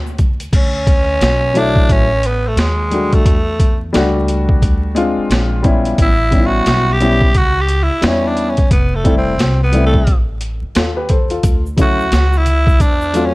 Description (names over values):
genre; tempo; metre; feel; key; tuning
hip hop, jazz-hop; 88 BPM; 4/4; swing 61% on 16ths; D major; A4 = 440 Hz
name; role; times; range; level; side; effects
upright bass; bass; 0.0-13.3 s; F1 to E2; -18 LUFS; equal; none
tube shaker and congas; percussion; 0.1-0.5, 11.4-13.3 s; none; -29 LUFS; right 1 dB; none
boom bap sampler-style drum kit; drums; 0.2-13.3 s; crash cymbal, hi-hat, kick drum, snare drum; -15 LUFS; equal; overdrive, vintage 12-bit sampler grit
growling tenor saxophone; melody; 0.6-13.3 s; G#3 to G4; -17 LUFS; right 1 dB; none
dark upright piano; accompaniment; 1.5-13.3 s; F#3 to C#5; -17 LUFS; left 2 dB; plate reverb
room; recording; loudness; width
light reverb; vinyl crackle; -11 LUFS; side -21 dB against mid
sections
0.5-13.3 A section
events
tenor saxophone solo 0.5-13.3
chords
0.0 N.C.; 0.5 Dmaj9; 2.6 D#dim; 3.3 Em11; 5.3 Bb9; 6.0 A7; 8.7 Fmaj7; 11.4 Dmaj9